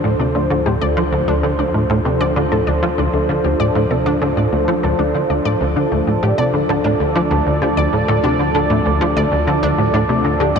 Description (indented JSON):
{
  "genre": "ambient",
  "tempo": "97 BPM",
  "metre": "4/4",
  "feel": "straight",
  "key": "D minor",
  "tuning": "A4 = 440 Hz",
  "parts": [
    { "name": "sweeping resonant pad", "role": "sustained chords", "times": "0.0-10.6 s", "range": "F3 to D5", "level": "-18 LUFS", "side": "right 1 dB", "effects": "chorus" },
    { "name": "tight sequencer bass", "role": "riff", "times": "0.0-10.6 s", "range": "D2 to F3", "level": "-18 LUFS", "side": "equal", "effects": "ensemble chorus, tape echo" },
    { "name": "analog drone", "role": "bass", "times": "0.0-10.6 s", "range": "D2", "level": "-26 LUFS", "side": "equal", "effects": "chorus" },
    { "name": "wide unison pluck", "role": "arpeggios", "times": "0.2-10.6 s", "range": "A3 to D5", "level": "-23 LUFS", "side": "moving between left 6 dB and right 1 dB", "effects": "auto-pan, tape echo" }
  ],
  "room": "wet huge ambient reverb, RT60 8.4 s",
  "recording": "dark, warm production",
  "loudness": "-14 LUFS",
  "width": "side -6 dB against mid",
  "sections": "0.0-10.6 A section",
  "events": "none",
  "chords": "0.0 Dm7",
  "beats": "0.04 | 0.66 1.28 1.90 2.52 | 3.13 3.75 4.37 4.99 | 5.61 6.23 6.85 7.46 | 8.08 8.70 9.32 9.94 | 10.56"
}